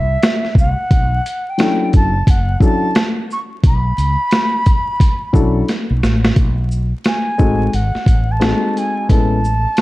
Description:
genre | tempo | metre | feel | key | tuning
hip hop, jazz-hop | 88 BPM | 4/4 | swing 63% on 16ths | B minor | A4 = 437 Hz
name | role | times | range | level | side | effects
mellow jazz flute | melody | 0.0-9.8 s | E5 to C#6 | -20 LUFS | right 1 dB | none
mellow fretless electric bass | bass | 0.0-9.6 s | F#1 to C#2 | -17 LUFS | equal | wide subtle chorus
boom bap sampler-style drum kit | drums | 0.2-9.8 s | hi-hat, kick drum, shaker, snare drum | -14 LUFS | equal | none
dark grand piano | accompaniment | 1.6-9.4 s | F#3 to A4 | -19 LUFS | left 3 dB | none
room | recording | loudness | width
digital ambience | dark, warm production, vinyl crackle | -13 LUFS | side -18 dB against mid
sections
0.0-6.4 A section; 6.4-9.8 B section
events
drum fill 5.7-6.4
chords
0.0 C; 0.9 Bm11; 6.4 B5; 7.7 G#7b9; 9.1 Amaj7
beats
0.22 | 0.91 1.59 2.27 2.95 | 3.63 4.32 5.00 5.68 | 6.36 7.04 7.72 8.41 | 9.09 9.77

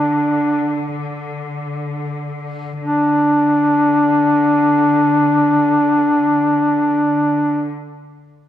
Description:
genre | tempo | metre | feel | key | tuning
caucasian folk, Caucasian lament | free time | none | none | unclear | A4 = 440 Hz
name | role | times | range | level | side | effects
mellow duduk | melody | 0.0-7.7 s | D4 | -14 LUFS | equal | none
clear symphonic string section | drone | 0.0-7.7 s | D3 | -25 LUFS | left 2 dB | none
room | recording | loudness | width
light reverb | none | -14 LUFS | side -11 dB against mid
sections
0.0-2.8 A section; 2.8-8.2 B section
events
slowing down 0.0-2.8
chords
none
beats
free time

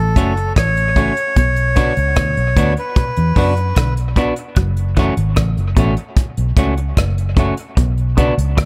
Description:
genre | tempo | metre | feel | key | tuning
roots reggae | 75 BPM | 4/4 | straight | F# minor | A4 = 439 Hz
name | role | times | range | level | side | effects
melodica | melody | 0.0-3.9 s | A4 to C#5 | -22 LUFS | equal | dub echo
vintage muted fingered electric bass | bass | 0.0-8.7 s | F#1 to F#2 | -20 LUFS | equal | none
semi-hollow electric guitar | accompaniment | 0.2-8.3 s | A3 to F#4 | -24 LUFS | equal | dub echo
soft brush drum kit | drums | 0.2-8.7 s | hi-hat, kick drum, rim click | -19 LUFS | equal | none
clean electric guitar | arpeggios | 0.6-8.7 s | A2 to F#3 | -27 LUFS | equal | analog chorus
room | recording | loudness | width
light reverb, studio reverb | none | -16 LUFS | mono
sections
0.0-8.7 A section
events
none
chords
0.0 F#m; 1.4 Bm; 4.6 F#m; 7.8 Bm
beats
0.56 | 1.36 2.17 2.97 3.77 | 4.57 5.37 6.17 6.97 | 7.77 8.57

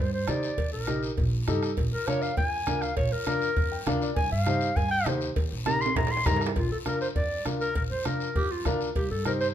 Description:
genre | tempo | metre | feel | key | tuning
latin, cumbia | 201 BPM | 4/4 | straight | Bb major | A4 = 440 Hz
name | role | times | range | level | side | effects
mellow clarinet | melody | 0.0-9.5 s | F4 to C6 | -29 LUFS | equal | none
upright bass | bass | 0.0-9.5 s | Bb1 to G2 | -32 LUFS | right 1 dB | none
warm upright piano | accompaniment | 0.3-9.5 s | D4 to G5 | -32 LUFS | left 3 dB | none
bombo | percussion | 0.3-9.4 s | none | -31 LUFS | equal | none
congas | percussion | 0.3-9.4 s | none | -35 LUFS | right 3 dB | none
cowbell and timbales | percussion | 0.3-9.4 s | none | -37 LUFS | right 7 dB | none
guiro | percussion | 0.3-9.5 s | none | -41 LUFS | left 6 dB | none
growling clarinet | second line | 8.4-8.9 s | D4 to G4 | -32 LUFS | right 1 dB | none
room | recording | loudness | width
light reverb | minimal, uncompressed stereo recording | -25 LUFS | side -10 dB against mid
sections
0.0-6.6 A section; 6.6-9.5 B section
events
clarinet solo 0.0-6.6; upright piano fill 3.6-4.2; drum fill 5.7-6.6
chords
0.0 Cm; 0.6 Eb; 1.8 Bb; 4.2 Cm; 5.4 Eb; 6.6 Bb; 9.0 Cm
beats
0.28 | 0.58 0.88 1.18 1.48 | 1.77 2.07 2.37 2.67 | 2.97 3.27 3.57 3.87 | 4.17 4.47 4.76 5.06 | 5.36 5.66 5.96 6.26 | 6.56 6.86 7.16 7.46 | 7.76 8.06 8.36 8.66 | 8.96 9.26

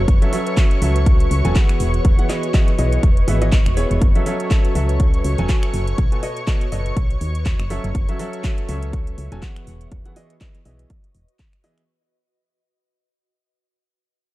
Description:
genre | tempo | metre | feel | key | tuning
piano house | 122 BPM | 4/4 | swing 56% on 16ths | F# dorian | A4 = 439 Hz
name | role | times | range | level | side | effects
analog string pad | sustained chords | 0.0-11.9 s | C#5 to C#6 | -31 LUFS | equal | ensemble chorus, sidechain pumping
solid FM bass | bass | 0.0-11.3 s | E1 to D#2 | -20 LUFS | equal | sidechain pumping
ethereal airy pad | texture | 0.0-11.9 s | F#4 to E5 | -30 LUFS | left 1 dB | ensemble chorus, built-in reverb, sidechain pumping
electronic kick drum | drums | 0.1-11.5 s | none | -17 LUFS | equal | overdrive
house drum kit | drums | 0.1-11.9 s | finger snaps, handclaps, hi-hat | -32 LUFS | right 1 dB | none
clear baby grand piano | riff | 0.2-11.8 s | B2 to G#5 | -26 LUFS | right 1 dB | sidechain pumping, tape echo
room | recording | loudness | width
little or no reverb | dark, warm production | -16 LUFS | side -17 dB against mid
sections
0.0-11.9 A section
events
drop 0.0-11.9; fade-out 4.0-11.9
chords
0.0 F#m7; 1.8 Emaj7; 4.0 F#m7; 6.0 B7; 7.7 F#m7; 9.7 Emaj7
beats
| 0.08 0.57 1.06 1.56 | 2.05 2.54 3.03 3.52 | 4.02 4.51 5.00 5.49 | 5.98 6.47 6.97 7.46 | 7.95 8.44 8.93 9.43 | 9.92 10.41 10.90 11.39

